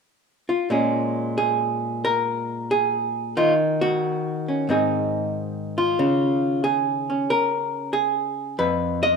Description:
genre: solo jazz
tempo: 91 BPM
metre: 4/4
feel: swing 67% on 8ths, rubato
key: Bb minor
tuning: A4 = 441 Hz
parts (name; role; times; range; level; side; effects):
- archtop guitar, miked and amplified; solo; 0.5-9.2 s; F2 to Eb5; -20 LUFS; equal; none
room: moderate large studio reverb, RT60 1.5 s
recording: minimal, uncompressed stereo recording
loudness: -20 LUFS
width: side -5 dB against mid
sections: 0.7-9.2 A section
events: none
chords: 0.0 N.C.; 0.7 Bbm7; 3.4 Ebm7; 4.7 Ab; 6.0 Db; 8.6 Db9/F (rootless)

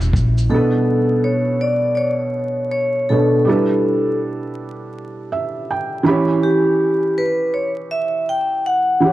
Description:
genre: lo-fi hip hop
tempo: 81 BPM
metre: 4/4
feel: swing 60% on 16ths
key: E dorian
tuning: A4 = 439 Hz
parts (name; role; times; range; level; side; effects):
- felt-muted upright piano; accompaniment; 0.0-9.1 s; B2 to B5; -18 LUFS; right 2 dB; none
- deep dark ambient pad; sustained chords; 0.0-0.5 s; E3 to E4; -35 LUFS; right 1 dB; none
- upright bass; bass; 0.0-0.5 s; E1 to A#1; -16 LUFS; equal; none
- electronic shaker and kick drum; drums; 0.0-0.5 s; none; -21 LUFS; equal; vintage 12-bit sampler grit
- vibraphone with medium hard mallets; melody; 0.5-9.1 s; G4 to G5; -18 LUFS; left 2 dB; none
room: light reverb, small room ambience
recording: vinyl crackle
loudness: -16 LUFS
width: side -15 dB against mid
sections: 0.5-9.1 A section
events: none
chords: 0.0 Em69; 0.5 Bm9; 3.5 G69; 6.1 Em6

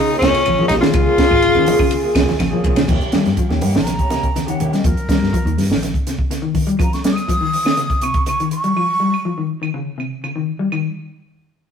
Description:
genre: afrobeat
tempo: 123 BPM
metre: 4/4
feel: straight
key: unclear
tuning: A4 = 440 Hz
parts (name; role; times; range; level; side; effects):
- bright tenor saxophone; melody; 0.0-2.4 s; Db4 to F4; -16 LUFS; left 4 dB; none
- breathy mellow round clay ocarina; second line; 0.0-2.4 s; F4 to Ab4; -20 LUFS; right 4 dB; none
- electric guitar at the edge of break-up; arpeggios; 0.0-10.9 s; C3 to G3; -22 LUFS; left 4 dB; vibrato effect
- fingered electric bass; bass; 0.0-6.8 s; Ab1 to Eb3; -22 LUFS; equal; none
- electric guitar through a small old amp; stabs; 0.1-4.8 s; F3 to Ab4; -25 LUFS; right 2 dB; none
- compact cocktail drum kit; drums; 0.2-8.7 s; crash cymbal, hi-hat, kick drum, ride cymbal, snare drum; -19 LUFS; right 1 dB; none
- claves; percussion; 0.2-2.5, 6.8-10.8 s; none; -32 LUFS; right 4 dB; none
- congas; percussion; 0.2-4.7 s; none; -26 LUFS; right 2 dB; none
- breathy jazz flute; melody; 3.6-9.5 s; Bb4 to Eb6; -21 LUFS; right 1 dB; none
room: moderate stone room reverb, RT60 1.0 s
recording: rough rehearsal-room recording, warm saturation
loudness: -15 LUFS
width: side -7 dB against mid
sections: 0.0-2.9 A section; 2.9-10.7 B section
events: drum fill 2.2-2.9; flute solo 2.9-10.7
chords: 0.0 Db6; 2.9 Eb7; 6.8 Db; 10.7 N.C.

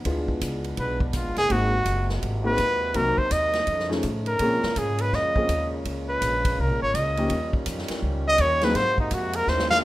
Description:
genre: jazz, big band swing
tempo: 166 BPM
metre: 4/4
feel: swing 64% on 8ths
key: Ab mixolydian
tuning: A4 = 440 Hz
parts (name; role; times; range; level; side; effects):
- bright trombone section; sustained chords; 0.0-9.8 s; Bb2 to Gb4; -33 LUFS; equal; none
- upright bass; bass; 0.0-9.8 s; F1 to Bb2; -28 LUFS; equal; none
- swinging big-band drum kit; drums; 0.0-9.8 s; hi-hat, kick drum, ride cymbal, snare drum; -31 LUFS; equal; none
- warm concert grand piano; accompaniment; 0.1-8.7 s; F3 to G#4; -28 LUFS; left 1 dB; none
- clear trumpet; melody; 0.8-9.8 s; D4 to F5; -23 LUFS; equal; plate reverb
room: moderate small room reverb, RT60 0.5 s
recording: rough home demo mix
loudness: -22 LUFS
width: side -16 dB against mid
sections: 0.0-9.8 A section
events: trumpet solo 0.0-9.8; drum fill 9.5-9.8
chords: 0.1 Ddim7; 1.5 Ab9; 2.9 Cm7b5; 3.7 F7alt; 4.4 Bbm7; 7.3 Eb9; 8.8 Ab9

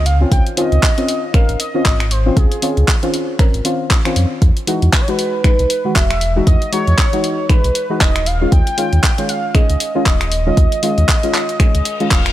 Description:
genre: deep house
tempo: 117 BPM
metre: 4/4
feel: swing 58% on 16ths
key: unclear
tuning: A4 = 445 Hz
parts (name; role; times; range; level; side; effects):
- warm velvety synth lead; melody; 0.0-12.3 s; Ab4 to G5; -21 LUFS; right 1 dB; chorus, analog delay
- deep mellow chord stab; stabs; 0.0-12.3 s; Eb3 to B4; -20 LUFS; left 1 dB; chorus, cassette tape, sidechain pumping
- sub bass with octave; bass; 0.0-12.3 s; D#1 to F2; -16 LUFS; equal; sidechain pumping
- deep house drum kit; drums; 0.1-12.3 s; finger snaps, handclaps, hi-hat; -20 LUFS; equal; none
- electronic kick drum; drums; 0.3-12.2 s; none; -14 LUFS; equal; none
- reverse cymbal; sound effects; 11.8-12.3 s; none; -25 LUFS; left 7 dB; none
room: digital ambience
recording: none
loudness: -12 LUFS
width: side -14 dB against mid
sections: 0.0-12.3 A section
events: reverse cymbal 11.8-12.3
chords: 0.1 Dbmaj9; 4.4 Emaj9; 8.3 Eb9sus4

